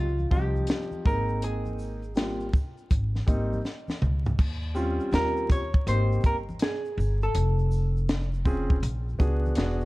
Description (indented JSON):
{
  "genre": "hip hop, jazz-hop",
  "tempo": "81 BPM",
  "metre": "4/4",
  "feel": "swing 66% on 16ths",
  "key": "Ab major",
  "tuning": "A4 = 440 Hz",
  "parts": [
    { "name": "vintage hollow-body jazz guitar", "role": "melody", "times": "0.0-8.3 s", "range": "F4 to Db5", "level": "-31 LUFS", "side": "equal", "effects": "none" },
    { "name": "dark grand piano", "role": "accompaniment", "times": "0.0-9.8 s", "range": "F3 to Ab4", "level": "-32 LUFS", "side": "equal", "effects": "none" },
    { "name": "upright bass", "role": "bass", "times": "0.0-9.8 s", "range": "E1 to Eb2", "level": "-27 LUFS", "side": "equal", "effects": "none" },
    { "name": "congas and tube shaker", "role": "percussion", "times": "0.2-9.8 s", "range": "none", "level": "-43 LUFS", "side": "left 1 dB", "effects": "none" },
    { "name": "compact cocktail drum kit", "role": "drums", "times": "0.3-9.8 s", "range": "crash cymbal, hi-hat, kick drum, shaker, snare drum, toms", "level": "-26 LUFS", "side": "equal", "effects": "none" }
  ],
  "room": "small room reverb",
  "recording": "dark, warm production, vinyl crackle",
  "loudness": "-24 LUFS",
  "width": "side -20 dB against mid",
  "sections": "0.0-4.4 A section; 4.4-9.8 B section",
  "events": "drum fill 3.6-4.4",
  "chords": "0.0 Dbmaj9#11; 1.1 Abmaj9; 4.4 Eb13; 5.9 Abmaj9; 7.3 F; 8.8 Bbm7"
}